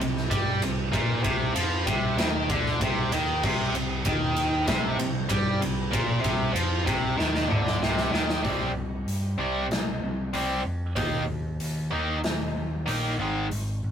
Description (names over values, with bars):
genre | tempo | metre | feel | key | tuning
hard rock | 96 BPM | 4/4 | straight | C minor | A4 = 439 Hz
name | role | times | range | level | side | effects
tight distorted guitar | riff | 0.0-13.4 s | Ab2 to Eb4 | -26 LUFS | right 1 dB | distortion
overdriven picked electric bass | bass | 0.0-13.9 s | Ab1 to G2 | -30 LUFS | equal | none
big rock drum kit | drums | 0.0-13.7 s | crash cymbal, hi-hat, kick drum, ride cymbal, snare drum, toms | -28 LUFS | equal | none
room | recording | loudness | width
moderate booth ambience, RT60 0.2 s | rough rehearsal-room recording, warm saturation | -24 LUFS | side -8 dB against mid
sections
0.0-8.4 A section; 8.4-13.9 B section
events
drum fill 7.2-8.4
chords
0.0 Cm; 8.4 C5; 11.0 Eb5; 13.2 Ab5